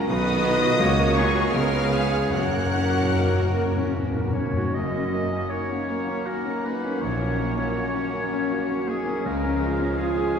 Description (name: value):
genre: classical, romantic movement for piano and orchestra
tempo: 72-86 BPM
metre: 3/4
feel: rubato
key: F# major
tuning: A4 = 441 Hz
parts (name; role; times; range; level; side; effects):
- bright concert grand piano; melody; 0.0-10.4 s; A#1 to Bb4; -27 LUFS; left 2 dB; none
- rich studio violin section; melody; 0.0-10.4 s; E#5 to F#6; -33 LUFS; left 4 dB; none
- concert flute; second line; 0.0-10.4 s; G#4 to F#5; -33 LUFS; equal; none
- rich studio violin section; second line; 0.0-10.4 s; G#3 to F#5; -36 LUFS; left 3 dB; none
- rich studio viola section; accompaniment; 0.0-10.4 s; G#3 to G#4; -31 LUFS; right 3 dB; none
- mellow French horn section; sustained chords; 0.0-10.4 s; A#3 to Gb4; -32 LUFS; left 2 dB; none
- mellow trombone section; sustained chords; 0.0-10.4 s; C#3 to C#4; -34 LUFS; right 4 dB; none
- clear trumpet; stabs; 0.0-4.4 s; B4 to C#5; -30 LUFS; left 1 dB; none
- bright studio cello section; bass; 0.0-9.9 s; F#2 to A#4; -34 LUFS; right 2 dB; none
- rich studio double bass section; bass; 0.0-9.9 s; F#1 to F#2; -30 LUFS; right 2 dB; none
- warm tuba; bass; 0.0-4.5 s; F#1 to C#2; -30 LUFS; right 2 dB; none
- timpani; percussion; 2.3-4.7, 9.3-10.3 s; F#2 to C#3; -30 LUFS; left 1 dB; none
- clear oboe; second line; 4.3-10.4 s; G#4 to D#5; -32 LUFS; right 1 dB; none
room: wet scoring stage reverb, RT60 1.7 s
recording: heard from further back in the room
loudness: -21 LUFS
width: side -7 dB against mid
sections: 0.0-4.7 A section; 4.7-10.4 B section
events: timpani fill 2.3-4.7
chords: 0.1 B; 0.8 F#/C#; 1.5 C#7; 2.3 F#; 7.0 F#/A#; 9.3 C#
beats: | 0.08 0.81 1.52 | 2.32 3.14 3.93 | 4.74 5.51 6.26 | 7.01 7.75 8.51 | 9.26 9.99